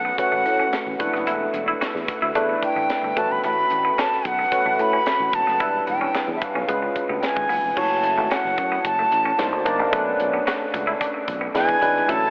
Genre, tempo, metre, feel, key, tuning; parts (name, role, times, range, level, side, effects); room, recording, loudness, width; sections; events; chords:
polished 1980s jazz-funk pop; 111 BPM; 4/4; straight; A mixolydian; A4 = 441 Hz
breathy jazz flute; melody; 0.0-12.3 s; E5 to B5; -22 LUFS; equal
barky tine electric piano; accompaniment; 0.0-12.3 s; F#3 to D5; -24 LUFS; equal; overdrive, analog chorus
clean electric guitar; riff; 0.0-12.2 s; F#3 to F#4; -29 LUFS; equal; analog chorus
sustaining fretless electric bass; bass; 0.0-12.3 s; E1 to A2; -31 LUFS; equal
tight funk drum kit; drums; 0.2-12.2 s; crash cymbal, hi-hat, kick drum, snare drum; -30 LUFS; equal
wet huge ambient reverb, RT60 6.6 s; dreamy mix soaked in reverb, telephone sound; -19 LUFS; side -37 dB against mid
0.0-7.8 A section; 7.8-12.3 B section
0.0 A69; 1.0 E7sus4; 3.2 A69; 5.6 Em7; 6.7 C#7; 7.8 F#m7; 9.4 Cm9; 9.9 Bm9; 11.6 E7